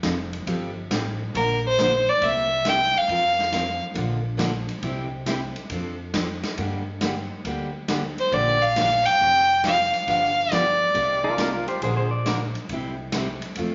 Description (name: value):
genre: country, western swing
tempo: 137 BPM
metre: 4/4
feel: swing 68% on 8ths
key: Bb major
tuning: A4 = 441 Hz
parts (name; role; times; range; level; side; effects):
- picked steel-string acoustic guitar; accompaniment; 0.0-13.7 s; C3 to Bb4; -32 LUFS; equal; none
- upright bass; bass; 0.0-13.7 s; F1 to G2; -34 LUFS; equal; none
- swinging big-band drum kit; drums; 0.0-13.7 s; hi-hat, kick drum, ride cymbal, snare drum; -34 LUFS; equal; none
- clear fiddle; melody; 1.4-3.8, 8.2-11.4 s; Bb4 to G5; -22 LUFS; equal; none
- pedal steel guitar; second line; 11.2-12.3 s; F4 to D5; -29 LUFS; equal; none
room: wet large studio reverb, RT60 1.2 s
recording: nothing above 7.5 kHz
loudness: -23 LUFS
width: mono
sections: 0.0-13.7 A section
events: none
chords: 0.0 Fadd9; 1.3 Bb; 2.2 C7; 3.1 Fsus4; 4.0 Bbmaj7; 4.8 C; 5.7 F6; 6.6 Gm; 8.3 Bb6; 9.2 Fsus2; 10.1 G7; 10.9 Cm7; 11.8 Bb; 12.7 C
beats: 0.03 0.47 0.90 | 1.34 1.78 2.21 2.65 | 3.08 3.52 3.96 4.39 | 4.83 5.27 5.70 6.14 | 6.58 7.01 7.45 7.89 | 8.32 8.76 9.20 9.63 | 10.07 10.51 10.95 11.38 | 11.82 12.26 12.70 13.13 | 13.57